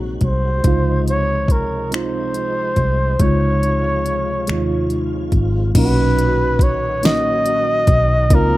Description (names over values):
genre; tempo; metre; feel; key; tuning
slow six-eight R&B; 47 BPM (dotted quarters); 6/8; straight; unclear; A4 = 440 Hz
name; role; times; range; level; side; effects
mellow FM electric piano; accompaniment; 0.0-8.6 s; Bb2 to Gb4; -22 LUFS; right 1 dB; chorus, phaser, analog delay
tonewheel organ; sustained chords; 0.0-8.6 s; C3 to Gb4; -29 LUFS; left 1 dB; overdrive, chorus vibrato, slow rotary speaker
vintage muted fingered electric bass; bass; 0.0-8.6 s; Ab1 to Eb2; -19 LUFS; equal; none
breathy flugelhorn; melody; 0.2-8.6 s; Bb4 to Eb5; -20 LUFS; equal; analog delay
smooth R&B drum kit; drums; 0.2-8.5 s; crash cymbal, finger snaps, hi-hat, kick drum, snare drum; -17 LUFS; equal; none
room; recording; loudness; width
light reverb; echo-heavy mix; -15 LUFS; side -16 dB against mid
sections
0.0-5.8 A section; 5.8-8.6 B section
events
none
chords
0.0 Ab9; 0.6 Dbmaj9; 5.8 Cbmaj7